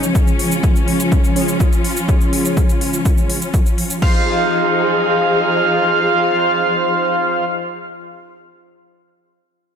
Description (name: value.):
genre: melodic techno.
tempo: 124 BPM.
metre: 4/4.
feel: straight.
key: F minor.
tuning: A4 = 439 Hz.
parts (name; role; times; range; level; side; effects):
dark symphonic string section; sustained chords; 0.0-7.4 s; F3 to Ab4; -20 LUFS; left 2 dB; vintage 12-bit sampler grit, sidechain pumping.
sync-sweep polysynth; stabs; 0.0-7.4 s; Db4 to F5; -18 LUFS; right 2 dB; chorus, sidechain pumping, analog delay.
techno drum kit; drums; 0.0-4.1 s; crash cymbal, hi-hat, shaker; -26 LUFS; equal; sidechain pumping on hats, sidechain pumping on perc, sidechain pumping on cymbals.
electronic kick drum; drums; 0.2-4.1 s; none; -15 LUFS; equal; none.
room: moderate lush hall reverb, RT60 2.3 s.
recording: dreamy mix soaked in reverb.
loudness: -14 LUFS.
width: side -7 dB against mid.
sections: 0.0-4.0 A section; 4.0-7.9 B section.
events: filter sweep on analog polysynth 0.0-4.0.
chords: 0.0 Db; 4.0 Fm7.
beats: | 0.15 0.64 1.12 1.60 | 2.09 2.57 3.05 3.54 | 4.02 4.51 4.99 5.47 | 5.96 6.44 6.92 7.41.